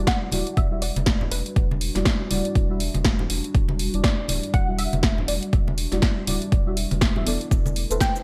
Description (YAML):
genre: deep house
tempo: 121 BPM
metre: 4/4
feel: swing 58% on 16ths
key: E minor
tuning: A4 = 440 Hz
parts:
  - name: dark analog pad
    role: sustained chords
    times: 0.0-8.2 s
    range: G3 to F#4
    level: -37 LUFS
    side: equal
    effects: chorus, sidechain pumping
  - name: deep mellow chord stab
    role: stabs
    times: 0.0-8.2 s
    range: G3 to E5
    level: -32 LUFS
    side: equal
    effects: chorus, phaser, sidechain pumping, digital delay
  - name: round analog bass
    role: bass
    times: 0.0-8.0 s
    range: D1 to E1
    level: -30 LUFS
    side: equal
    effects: sidechain pumping
  - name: soft round pluck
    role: melody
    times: 0.1-8.2 s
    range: B4 to G5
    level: -33 LUFS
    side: equal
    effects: ensemble chorus, digital delay
  - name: electronic kick drum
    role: drums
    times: 0.1-8.1 s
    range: none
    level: -24 LUFS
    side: equal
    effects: none
  - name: punchy analog drum machine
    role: drums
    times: 0.1-8.2 s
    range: hi-hat, shaker, snare drum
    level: -29 LUFS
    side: equal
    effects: overdrive, gated reverb
  - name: congas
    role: percussion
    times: 0.3-7.7 s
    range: none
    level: -33 LUFS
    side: equal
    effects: none
room: light reverb, digital ambience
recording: bright 1980s-style digital production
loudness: -23 LUFS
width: mono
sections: 0.0-8.2 A section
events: none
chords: 0.0 Em9; 7.5 Amadd9